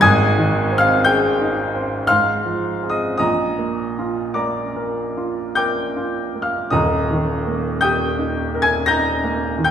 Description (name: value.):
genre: classical, romantic nocturne for solo piano.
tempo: 47-60 BPM.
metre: 3/4.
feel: rubato.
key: Eb major.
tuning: A4 = 439 Hz.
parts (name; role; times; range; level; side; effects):
clear baby grand piano; solo; 0.0-9.7 s; Eb1 to Bb6; -16 LUFS; equal; none.
room: wet recital hall reverb, RT60 1.7 s.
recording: recorded in a church or concert hall.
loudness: -17 LUFS.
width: side -9 dB against mid.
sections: 0.0-9.7 A section.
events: none.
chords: 0.0 Ab; 2.1 Fm/Ab; 3.2 Bb; 6.7 Eb.